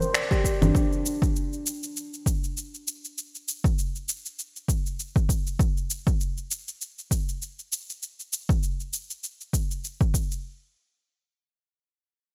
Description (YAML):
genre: organic downtempo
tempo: 99 BPM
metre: 4/4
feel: swing 56% on 16ths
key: unclear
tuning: A4 = 440 Hz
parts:
  - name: handpan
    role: arpeggios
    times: 0.0-0.7 s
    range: D4 to D5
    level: -32 LUFS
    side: equal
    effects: low-pass filter, digital delay
  - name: electronic shaker, finger snaps and congas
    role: drums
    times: 0.0-10.4 s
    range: none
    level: -32 LUFS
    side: equal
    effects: overdrive, gated reverb
  - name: electronic kick drum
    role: drums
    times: 0.3-10.3 s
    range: none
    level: -27 LUFS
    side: equal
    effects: overdrive
  - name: round analog bass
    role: bass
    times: 0.6-0.7 s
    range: G1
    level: -25 LUFS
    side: equal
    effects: none
room: light reverb, studio ambience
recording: bright 1980s-style digital production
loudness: -28 LUFS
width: mono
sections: 0.0-10.4 A section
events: none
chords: 0.0 G5; 0.7 N.C.